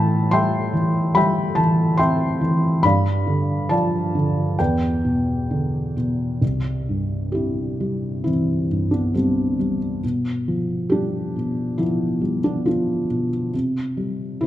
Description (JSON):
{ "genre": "classical, lyrical solo piano", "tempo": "67 BPM", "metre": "4/4", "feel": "uneven beats, rubato", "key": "A minor, C major from 6.4 s", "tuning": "A4 = 437 Hz", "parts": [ { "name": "felt-muted upright piano", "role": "solo", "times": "0.0-14.5 s", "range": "C2 to C6", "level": "-19 LUFS", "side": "equal", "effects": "none" } ], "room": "wet recital hall reverb, RT60 1.6 s", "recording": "dark, warm production", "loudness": "-19 LUFS", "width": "side -13 dB against mid", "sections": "0.0-6.4 A section; 6.4-14.5 B section", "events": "none", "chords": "0.0 Am7; 2.8 G7; 4.6 Em7; 6.4 Cmaj7; 10.0 G7/B; 13.5 C5", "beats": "0.32 1.16 1.99 | 2.84 3.71 4.59 5.50 | 6.42 7.34 8.25 9.15 | 10.04 10.92 11.79 12.67 | 13.54 14.43" }